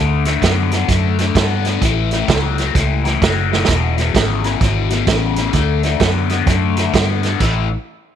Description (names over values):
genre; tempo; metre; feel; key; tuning
electric blues shuffle; 129 BPM; 4/4; swing 63% on 8ths; A major; A4 = 439 Hz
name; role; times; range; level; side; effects
cranked stack guitar; riff; 0.0-7.7 s; E2 to B3; -19 LUFS; left 13 dB; overdrive, phaser
vintage muted fingered electric bass; bass; 0.0-7.8 s; E1 to G2; -18 LUFS; right 1 dB; none
vintage drum kit; drums; 0.3-7.5 s; crash cymbal, hi-hat, kick drum, snare drum; -18 LUFS; right 4 dB; none
room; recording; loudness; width
light reverb, studio reverb; 1960s-style stereo; -14 LUFS; side -9 dB against mid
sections
0.0-8.2 A section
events
drum fill 3.5; stop 7.4-8.2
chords
0.0 D; 1.8 A; 3.7 E; 5.5 D; 7.4 A5